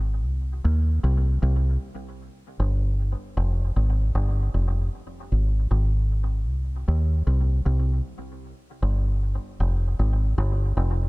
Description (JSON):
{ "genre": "reggae", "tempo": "77 BPM", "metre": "4/4", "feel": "swing 59% on 16ths", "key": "F minor", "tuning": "A4 = 440 Hz", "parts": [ { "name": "deep dub fingered electric bass", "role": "solo", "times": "0.0-11.1 s", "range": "F1 to Eb2", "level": "-22 LUFS", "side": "equal", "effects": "none" } ], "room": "little or no reverb", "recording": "none", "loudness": "-21 LUFS", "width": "side -24 dB against mid", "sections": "0.0-3.4 A section; 3.4-11.1 B section", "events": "none", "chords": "none", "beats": "| 0.24 1.02 1.80 2.58 | 3.36 4.14 4.92 5.69 | 6.47 7.25 8.03 8.81 | 9.59 10.37" }